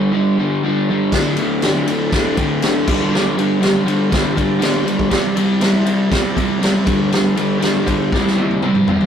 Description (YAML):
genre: garage rock duo or trio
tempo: 120 BPM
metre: 4/4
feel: straight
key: unclear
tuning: A4 = 440 Hz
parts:
  - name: crunchy overdriven guitar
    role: riff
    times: 0.0-9.1 s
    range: D2 to C4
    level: -16 LUFS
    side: equal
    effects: none
  - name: vintage drum kit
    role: drums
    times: 1.1-9.1 s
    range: crash cymbal, kick drum, ride cymbal, snare drum, toms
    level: -19 LUFS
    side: equal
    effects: none
room: wet studio reverb, RT60 0.6 s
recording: rough rehearsal-room recording, tube saturation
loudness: -14 LUFS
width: side -8 dB against mid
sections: 0.0-9.1 A section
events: drum fill 8.1-9.1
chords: 0.0 G5; 1.1 D5; 2.9 G5; 5.1 C5; 6.9 G5; 8.1 C5